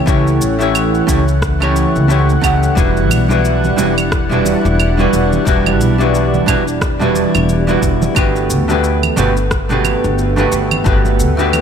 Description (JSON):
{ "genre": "sunset chillout", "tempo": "89 BPM", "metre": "4/4", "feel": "swing 58% on 16ths", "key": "unclear", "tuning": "A4 = 440 Hz", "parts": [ { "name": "vintage hollow-body jazz guitar", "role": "accompaniment", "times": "0.0-11.6 s", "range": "G3 to F#5", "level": "-16 LUFS", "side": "right 1 dB", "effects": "auto-pan, tape echo" }, { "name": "lush unison pad", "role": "sustained chords", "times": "0.0-11.6 s", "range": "E3 to F#5", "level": "-19 LUFS", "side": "equal", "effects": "chorus" }, { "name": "upright bass", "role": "bass", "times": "0.1-11.6 s", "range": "E1 to D2", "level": "-16 LUFS", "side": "equal", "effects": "none" }, { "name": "electronic kick drum", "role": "drums", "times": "0.1-11.0 s", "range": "none", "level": "-17 LUFS", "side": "left 1 dB", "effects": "none" }, { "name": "electronic shaker, claves and rim click", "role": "drums", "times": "0.1-11.6 s", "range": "none", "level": "-22 LUFS", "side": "right 4 dB", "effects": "none" }, { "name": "congas", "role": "percussion", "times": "2.8-11.6 s", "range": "none", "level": "-23 LUFS", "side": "right 3 dB", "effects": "none" } ], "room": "light reverb", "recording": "none", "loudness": "-11 LUFS", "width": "side -7 dB against mid", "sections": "0.0-11.6 A section", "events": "none", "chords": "0.0 A7; 2.8 Em9; 8.2 Gmaj9" }